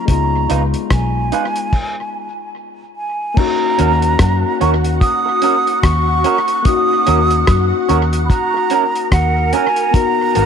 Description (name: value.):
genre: lovers rock reggae.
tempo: 73 BPM.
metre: 4/4.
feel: swing 59% on 16ths.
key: Eb minor.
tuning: A4 = 438 Hz.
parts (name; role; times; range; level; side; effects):
breathy hollow silver concert flute; melody; 0.0-10.5 s; Gb5 to Eb6; -18 LUFS; right 3 dB; tape echo.
overdriven tine electric piano; accompaniment; 0.0-10.5 s; Gb3 to Bb4; -21 LUFS; left 14 dB; tape echo.
vintage muted fingered electric bass; bass; 0.1-10.5 s; Ab1 to Gb2; -16 LUFS; equal; none.
cloth-damped thuddy drum kit; drums; 0.1-10.5 s; crash cymbal, hi-hat, kick drum, rim click; -18 LUFS; equal; tape echo.
electric guitar through a small old amp; stabs; 0.5-10.5 s; Cb4 to Cb5; -22 LUFS; right 13 dB; none.
soft string machine; second line; 3.4-10.5 s; Gb4 to Bb5; -23 LUFS; equal; phaser, ensemble chorus.
room: light reverb, small room ambience.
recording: 1960s-style stereo with parts hard left and right.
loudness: -13 LUFS.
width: side -7 dB against mid.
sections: 0.0-3.4 A section; 3.4-10.5 B section.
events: stop 1.7-3.4.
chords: 0.1 Db9; 3.4 Ebm7; 9.9 Abm9.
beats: | 0.08 0.91 1.73 2.55 | 3.37 4.19 5.01 5.84 | 6.66 7.48 8.30 9.12 | 9.94.